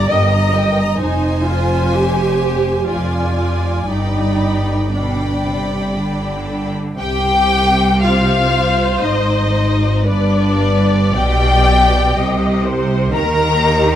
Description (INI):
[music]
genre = classical, slow romantic movement for string orchestra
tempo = 53-68 BPM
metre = 3/4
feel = rubato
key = C minor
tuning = A4 = 440 Hz
[part]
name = rich symphonic violin section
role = melody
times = 0.0-14.0 s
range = D5 to Eb6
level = -20 LUFS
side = left 3 dB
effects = none
[part]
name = rich studio violin section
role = second line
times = 0.0-14.0 s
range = D4 to Bb5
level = -22 LUFS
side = left 2 dB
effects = none
[part]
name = rich studio viola section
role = accompaniment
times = 0.0-14.0 s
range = D4 to Eb5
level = -20 LUFS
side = right 1 dB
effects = none
[part]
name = clear symphonic cello section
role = bass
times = 0.1-14.0 s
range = F2 to Eb3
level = -20 LUFS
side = right 1 dB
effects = none
[part]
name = rich symphonic double bass section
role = bass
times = 0.1-14.0 s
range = F1 to Eb2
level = -18 LUFS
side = right 1 dB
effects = none
[sound]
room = light reverb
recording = close, detailed microphones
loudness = -13 LUFS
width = side -10 dB against mid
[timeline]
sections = 0.0-7.0 A section; 7.0-14.0 B section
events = none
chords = 0.1 Eb/G; 1.0 Fm; 2.9 Ddim/F; 3.9 G; 7.0 Cm; 10.1 G; 12.2 Cm; 13.1 Eb